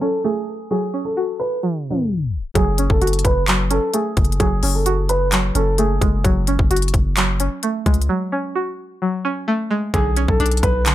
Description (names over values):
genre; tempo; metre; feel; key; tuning
hip hop, trap; 130 BPM; 4/4; half-time; F# minor; A4 = 442 Hz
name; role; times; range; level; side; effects
dark grand piano; melody; 0.0-6.2, 9.9-10.8 s; G#4 to B4; -22 LUFS; right 1 dB; low-pass filter, digital delay
string-like resonator pluck; accompaniment; 0.0-10.9 s; D3 to F#4; -22 LUFS; right 1 dB; chorus, low-pass filter
long sustained 808-style bass; bass; 2.6-10.9 s; F#1 to C#2; -19 LUFS; equal; none
trap drum kit; drums; 2.6-10.9 s; handclaps, hi-hat, kick drum; -19 LUFS; equal; none
room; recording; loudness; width
little or no reverb; low-pass filter, tape stop; -17 LUFS; side -13 dB against mid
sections
0.0-2.6 A section; 2.6-10.9 B section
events
filter sweep 0.0-2.6, 2.6-9.9; tape stop 1.6-2.6; break 6.2-9.9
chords
0.0 F#madd9; 9.9 Bmadd9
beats
0.24 | 0.71 1.17 1.63 2.09 | 2.55 3.01 3.48 3.94 | 4.40 4.86 5.32 5.78 | 6.25 6.71 7.17 7.63 | 8.09 8.55 9.01 9.48 | 9.94 10.40 10.86